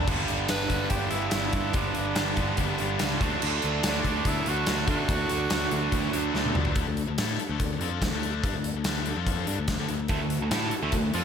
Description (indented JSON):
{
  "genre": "classic rock",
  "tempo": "144 BPM",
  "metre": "4/4",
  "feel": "straight",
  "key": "D major",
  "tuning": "A4 = 440 Hz",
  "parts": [
    { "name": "bright tonewheel organ", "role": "sustained chords", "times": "0.0-11.2 s", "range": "B3 to F5", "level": "-40 LUFS", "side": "equal", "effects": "none" },
    { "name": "tight distorted guitar", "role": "riff", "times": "0.0-11.2 s", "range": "G2 to A4", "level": "-32 LUFS", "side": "left 11 dB", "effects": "distortion, slapback echo" },
    { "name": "tight distorted guitar", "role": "riff", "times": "0.0-6.5, 10.1-11.2 s", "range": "G2 to A4", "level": "-30 LUFS", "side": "right 9 dB", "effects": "distortion, slapback echo" },
    { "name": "picked electric bass", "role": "bass", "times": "0.0-11.2 s", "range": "G1 to D3", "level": "-32 LUFS", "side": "equal", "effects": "none" },
    { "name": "gated 80s drum kit", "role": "drums", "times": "0.1-11.2 s", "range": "crash cymbal, hi-hat, kick drum, snare drum, tambourine, toms", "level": "-29 LUFS", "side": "equal", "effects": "none" },
    { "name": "raspy tenor saxophone", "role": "melody", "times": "0.5-6.3 s", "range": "D4 to B4", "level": "-33 LUFS", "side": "right 2 dB", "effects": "analog delay" }
  ],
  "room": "moderate lush hall reverb, RT60 1.8 s",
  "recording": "big arena sound",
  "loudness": "-24 LUFS",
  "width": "side -7 dB against mid",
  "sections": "0.0-6.8 A section; 6.8-11.2 B section",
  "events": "drum fill 6.3-6.8",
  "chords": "0.1 G; 3.2 D"
}